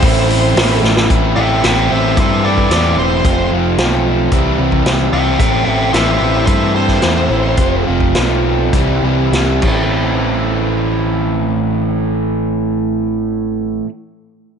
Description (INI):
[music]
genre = classic rock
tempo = 95-113 BPM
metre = 4/4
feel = straight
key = A minor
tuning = A4 = 440 Hz
[part]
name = smooth overdriven lead guitar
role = melody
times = 0.0-7.8 s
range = B4 to G5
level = -18 LUFS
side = left 1 dB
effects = slapback echo
[part]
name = overdriven semi-hollow guitar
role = riff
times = 0.0-13.9 s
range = F2 to F4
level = -16 LUFS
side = right 2 dB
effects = none
[part]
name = growling picked electric bass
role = bass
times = 0.0-13.8 s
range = E1 to G2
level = -18 LUFS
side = equal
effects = overdrive
[part]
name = vintage drum kit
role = drums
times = 0.0-9.8 s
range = crash cymbal, hi-hat, kick drum, snare drum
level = -17 LUFS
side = equal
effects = none
[sound]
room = light reverb, studio reverb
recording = nothing above 10.5 kHz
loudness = -12 LUFS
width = side -7 dB against mid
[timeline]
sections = 0.0-1.1 A section; 1.1-9.9 B section; 9.9-14.6 C section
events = drum fill 0.8; lead electric guitar solo 1.1-9.9; slowing down 5.4-9.9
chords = 0.0 Am; 1.1 Amadd9; 3.2 F; 4.3 C; 5.4 Am; 7.6 F; 8.7 C; 9.6 Am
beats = 0.04 0.57 | 1.10 1.64 2.17 2.71 | 3.24 3.78 4.31 4.85 | 5.38 5.92 6.46 7.01 | 7.57 8.14 8.72 9.32 | 9.94 10.57 11.20 11.83 | 12.46 13.09 13.72